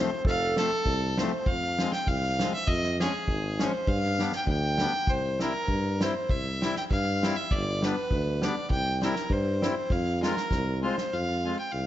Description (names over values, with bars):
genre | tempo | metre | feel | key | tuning
alpine folk, alpine dance band | 99 BPM | 2/4 | swing 54% on 8ths | F harmonic minor | A4 = 442 Hz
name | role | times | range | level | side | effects
rich fiddle | melody | 0.0-11.9 s | Ab4 to G5 | -30 LUFS | equal | none
warm clarinet | second line | 0.0-1.2 s | A4 | -31 LUFS | right 3 dB | none
accordion | accompaniment | 0.0-11.6 s | F3 to F4 | -34 LUFS | left 3 dB | none
warm tuba | bass | 0.0-11.9 s | F1 to G2 | -30 LUFS | equal | none
natural country drum kit | drums | 0.2-11.1 s | kick drum, snare drum | -30 LUFS | equal | none
room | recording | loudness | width
moderate recital hall reverb, RT60 1.6 s | nothing above 7.6 kHz | -25 LUFS | side -12 dB against mid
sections
0.0-1.5 A section; 1.5-11.1 B section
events
drum fill 10.5-11.1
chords
0.0 F; 1.5 Fm; 2.7 Db/F; 3.9 G; 5.1 C; 7.5 G; 8.7 C; 9.9 Fm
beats
| 0.25 0.86 | 1.47 2.08 | 2.68 3.28 | 3.88 4.48 | 5.08 5.69 | 6.30 6.91 | 7.51 8.11 | 8.71 9.30 | 9.90 10.51 | 11.12 11.73